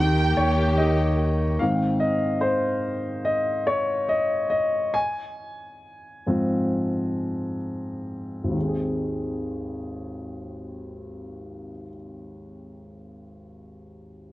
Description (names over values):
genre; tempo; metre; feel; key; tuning
pop ballad; 63-73 BPM; 4/4; straight; Ab major; A4 = 440 Hz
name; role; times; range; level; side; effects
warm studio violin section; melody; 0.0-0.8 s; G5; -29 LUFS; right 1 dB; digital delay
warm concert grand piano; accompaniment; 0.0-14.3 s; Ab1 to Ab5; -25 LUFS; left 1 dB; none
dark studio string section; sustained chords; 0.0-1.6 s; Eb3 to G4; -28 LUFS; right 1 dB; none
fingered electric bass; bass; 0.0-1.6 s; Eb2; -22 LUFS; right 1 dB; none
room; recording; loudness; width
light reverb, small room ambience; worn, warbling old tape, cassette tape, warbly pitch drift, nothing above 10.8 kHz; -22 LUFS; side -16 dB against mid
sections
0.0-1.6 A section; 1.6-8.6 B section; 8.6-12.3 C section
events
slowing down 1.6-8.6; grand piano solo 1.6-8.6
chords
0.0 Eb; 1.6 Ab; 5.0 Ab6; 8.6 Ab